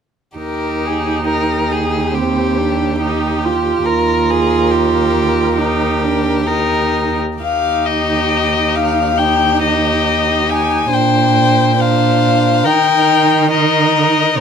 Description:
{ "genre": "classical, slow romantic movement for string quartet", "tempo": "69 BPM", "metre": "4/4", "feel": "uneven beats, rubato", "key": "Eb major", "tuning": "A4 = 440 Hz", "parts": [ { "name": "warm violin", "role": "melody", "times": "0.4-14.4 s", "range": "G4 to Ab5", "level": "-17 LUFS", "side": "left 8 dB", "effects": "none" }, { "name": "rich violin", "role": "second line", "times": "0.4-14.4 s", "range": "G4 to C5", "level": "-20 LUFS", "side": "left 3 dB", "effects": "none" }, { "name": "warm viola", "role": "accompaniment", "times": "0.4-14.4 s", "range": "C4 to F4", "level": "-18 LUFS", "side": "right 4 dB", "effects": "none" }, { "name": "rich cello", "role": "bass", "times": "0.4-14.4 s", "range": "Eb2 to Eb3", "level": "-18 LUFS", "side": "right 5 dB", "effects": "none" } ], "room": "light reverb", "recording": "close, detailed microphones", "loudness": "-12 LUFS", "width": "side -7 dB against mid", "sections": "0.4-7.4 A section; 7.4-14.4 B section", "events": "none", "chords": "0.4 Eb; 10.9 Bbadd9; 12.7 Eb" }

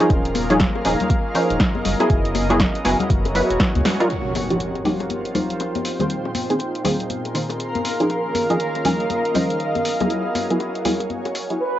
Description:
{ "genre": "deep house", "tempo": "120 BPM", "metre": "4/4", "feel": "swing 61% on 16ths", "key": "F minor", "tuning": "A4 = 440 Hz", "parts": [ { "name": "warm analog pad", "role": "sustained chords", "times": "0.0-11.6 s", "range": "Bb2 to Bb4", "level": "-30 LUFS", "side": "equal", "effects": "chorus, tremolo, sidechain pumping, cassette tape" }, { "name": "filtered dub chord stab", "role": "stabs", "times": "0.0-11.6 s", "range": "Eb3 to C5", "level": "-21 LUFS", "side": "equal", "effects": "ensemble chorus, sidechain pumping, cassette tape, analog delay" }, { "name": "deep house drum kit", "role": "drums", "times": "0.0-11.6 s", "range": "hi-hat, snare drum", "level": "-26 LUFS", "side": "equal", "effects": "overdrive, cassette tape" }, { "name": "granular cloud pad", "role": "texture", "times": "0.0-11.6 s", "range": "F4 to C6", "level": "-25 LUFS", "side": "right 1 dB", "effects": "built-in reverb, sidechain pumping, cassette tape" }, { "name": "warm sub bass", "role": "bass", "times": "0.1-3.8 s", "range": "Eb1 to Db2", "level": "-25 LUFS", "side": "equal", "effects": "sidechain pumping" }, { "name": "electronic kick drum", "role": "drums", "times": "0.1-3.7 s", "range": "none", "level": "-20 LUFS", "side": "equal", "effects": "overdrive, cassette tape" }, { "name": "bongos and congas", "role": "percussion", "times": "0.1-11.3 s", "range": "none", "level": "-27 LUFS", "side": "left 6 dB", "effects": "none" }, { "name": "impact", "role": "sound effects", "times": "4.1-6.1 s", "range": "none", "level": "-31 LUFS", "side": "right 1 dB", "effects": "none" }, { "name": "mellow horn-like synth lead", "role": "melody", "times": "11.6-11.8 s", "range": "Cb5", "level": "-21 LUFS", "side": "right 3 dB", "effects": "phaser, ensemble chorus, cassette tape" } ], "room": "moderate small room reverb, RT60 0.5 s", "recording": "home recording on cassette, vinyl crackle, nothing above 8.0 kHz", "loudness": "-18 LUFS", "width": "side -12 dB against mid", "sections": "0.0-4.1 A section; 4.1-11.8 B section", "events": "drum fill 3.8; band accent 3.8; impact 4.1-6.1; filter sweep on analog synth pad 4.1-11.8", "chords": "0.1 Eb9sus4; 1.8 Gb9sus4; 4.1 F9sus4; 6.1 Bb9sus4; 8.1 Eb9sus4; 9.8 Gb9sus4" }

